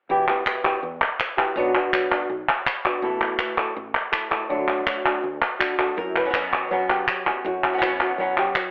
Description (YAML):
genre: flamenco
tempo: 163 BPM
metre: 4/4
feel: straight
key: unclear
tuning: A4 = 440 Hz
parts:
  - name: flamenco guitar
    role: melody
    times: 0.1-8.7 s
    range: F#2 to B4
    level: -27 LUFS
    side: equal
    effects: none
  - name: woody fretless electric bass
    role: bass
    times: 0.1-8.7 s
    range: A1 to F#3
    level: -35 LUFS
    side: equal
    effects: none
  - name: palmas hand claps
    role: percussion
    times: 0.3-8.7 s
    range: none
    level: -26 LUFS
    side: equal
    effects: none
  - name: flamenco guitar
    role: stabs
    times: 6.0-8.6 s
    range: B2 to F#4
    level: -30 LUFS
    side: equal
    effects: none
room: moderate large studio reverb, RT60 0.9 s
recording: telephone sound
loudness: -23 LUFS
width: mono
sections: 0.1-6.0 A section; 6.0-8.7 B section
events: none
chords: 0.1 Em; 1.6 Bm; 3.0 Asus2; 4.5 D; 6.0 F#sus4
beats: | 0.10 0.46 0.83 1.20 | 1.56 1.93 2.29 2.66 | 3.03 3.39 3.76 4.13 | 4.50 4.86 5.23 5.60 | 5.97 6.34 6.71 7.08 | 7.45 7.82 8.19 8.56